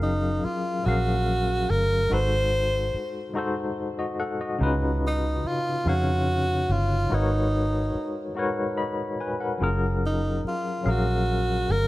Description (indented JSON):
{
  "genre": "slow six-eight R&B",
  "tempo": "48 BPM (dotted quarters)",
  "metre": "6/8",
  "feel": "straight",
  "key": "F# major",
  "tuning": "A4 = 436 Hz",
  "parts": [
    { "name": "warm tenor saxophone", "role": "melody", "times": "0.0-11.9 s", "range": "D#4 to B#4", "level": "-27 LUFS", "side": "equal", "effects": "none" },
    { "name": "tine electric piano", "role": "accompaniment", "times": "0.0-11.9 s", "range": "C#3 to B5", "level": "-28 LUFS", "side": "left 2 dB", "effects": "fast tremolo" },
    { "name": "vintage muted fingered electric bass", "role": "bass", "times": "0.0-11.9 s", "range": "F#1 to E#2", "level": "-25 LUFS", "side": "equal", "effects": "none" }
  ],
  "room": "small room ambience",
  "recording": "none",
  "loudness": "-23 LUFS",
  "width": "side -17 dB against mid",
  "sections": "0.0-11.9 A section",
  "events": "none",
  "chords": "0.0 F#maj7; 2.1 G#7b9; 4.6 C#9; 7.1 G#m11; 9.6 F#maj7",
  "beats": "0.85 | 2.10 3.35 | 4.60 5.85 | 7.10 8.35 | 9.60 10.85"
}